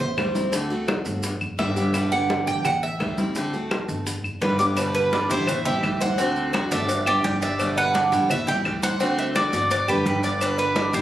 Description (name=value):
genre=latin, Cuban son and guajira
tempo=170 BPM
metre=4/4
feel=straight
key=G major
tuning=A4 = 439 Hz
part: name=Cuban tres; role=arpeggios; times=0.0-11.0 s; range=C4 to G5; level=-26 LUFS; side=right 3 dB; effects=none
part: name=upright bass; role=bass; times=0.0-11.0 s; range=F#1 to D2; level=-31 LUFS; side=equal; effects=none
part: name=bongos and cowbell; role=percussion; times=0.0-10.9 s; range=none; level=-32 LUFS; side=left 3 dB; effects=none
part: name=congas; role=percussion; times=0.0-11.0 s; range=none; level=-29 LUFS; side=equal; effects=none
part: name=maracas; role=percussion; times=0.0-11.0 s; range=none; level=-37 LUFS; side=right 2 dB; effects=none
part: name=picked steel-string acoustic guitar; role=accompaniment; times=0.2-11.0 s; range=B2 to G4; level=-27 LUFS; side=left 1 dB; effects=none
part: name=claves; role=percussion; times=0.2-10.6 s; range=none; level=-30 LUFS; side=left 2 dB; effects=none
part: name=Cuban tres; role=melody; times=4.4-11.0 s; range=B4 to G5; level=-24 LUFS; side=right 1 dB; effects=plate reverb
room=moderate studio reverb, RT60 0.5 s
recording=recorded on a phone in the room, club reverb, compression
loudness=-20 LUFS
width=side -12 dB against mid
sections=0.0-4.8 A section; 4.8-11.0 B section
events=Cuban tres solo 0.0-4.8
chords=0.0 Am7; 0.5 D7; 1.2 G; 2.7 Am7; 3.4 D7; 4.1 G; 5.5 Am7; 6.2 D7; 6.9 G; 8.3 Am7; 9.0 D7; 9.7 G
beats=0.17 | 0.53 0.88 1.24 1.59 | 1.94 2.30 2.65 3.00 | 3.36 3.71 4.07 4.42 | 4.77 5.13 5.48 5.83 | 6.18 6.54 6.89 7.24 | 7.59 7.95 8.30 8.65 | 9.01 9.36 9.71 10.06 | 10.41 10.77